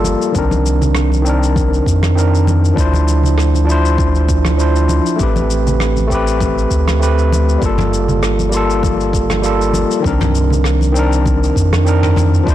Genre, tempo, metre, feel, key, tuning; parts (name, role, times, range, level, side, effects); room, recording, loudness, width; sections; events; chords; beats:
sunset chillout; 99 BPM; 4/4; swing 55% on 16ths; A4 = 440 Hz
overdriven tine electric piano; accompaniment; 0.0-12.5 s; Eb3 to C5; -16 LUFS; moving between left 3 dB and right 5 dB; auto-pan, low-pass filter, ping-pong delay
warm sub bass; bass; 0.0-12.5 s; G1 to F2; -14 LUFS; equal; tube saturation
congas; percussion; 0.0-12.3 s; -24 LUFS; left 2 dB
soft brush drum kit; drums; 0.1-12.5 s; rim click, shaker, toms; -24 LUFS; equal; soft clipping on snare
electronic kick drum; drums; 0.3-12.5 s; -20 LUFS; equal; overdrive
light reverb; blown-out, overdriven recording, overdrive; -12 LUFS; side -13 dB against mid
0.0-12.5 A section
filter sweep on tine electric piano 0.0-12.5
0.3 Cm9; 2.8 Dm9; 5.2 Am9; 7.6 Gm9; 10.0 Cm9
| 0.35 0.95 1.56 2.17 | 2.77 3.38 3.98 4.59 | 5.20 5.80 6.41 7.01 | 7.62 8.23 8.83 9.44 | 10.04 10.65 11.26 11.86 | 12.47